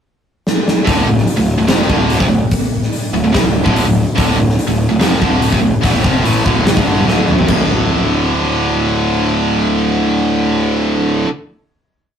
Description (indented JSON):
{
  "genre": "hard rock",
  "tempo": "145 BPM",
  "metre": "4/4",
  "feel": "straight",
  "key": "D minor",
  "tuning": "A4 = 440 Hz",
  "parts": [
    { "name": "huge arena drum kit", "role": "drums", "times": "0.5-7.6 s", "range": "crash cymbal, hi-hat, kick drum, snare drum, toms", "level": "-15 LUFS", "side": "equal", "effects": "none" },
    { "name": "tight distorted guitar", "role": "riff", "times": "0.9-11.3 s", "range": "D2 to A3", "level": "-15 LUFS", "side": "right 1 dB", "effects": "distortion" },
    { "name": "fuzz picked electric bass", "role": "bass", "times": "0.9-11.2 s", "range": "D1 to C2", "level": "-19 LUFS", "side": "equal", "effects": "overdrive" }
  ],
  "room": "moderate small room reverb, RT60 0.5 s",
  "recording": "rough rehearsal-room recording, tube saturation",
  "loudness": "-12 LUFS",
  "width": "side -8 dB against mid",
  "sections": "0.0-0.9 pickup bar; 0.9-7.5 riff; 7.5-10.8 final chord",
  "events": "drum fill 0.5-0.9, 7.1-7.5",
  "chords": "0.0 N.C.; 0.9 Dm; 7.5 D5"
}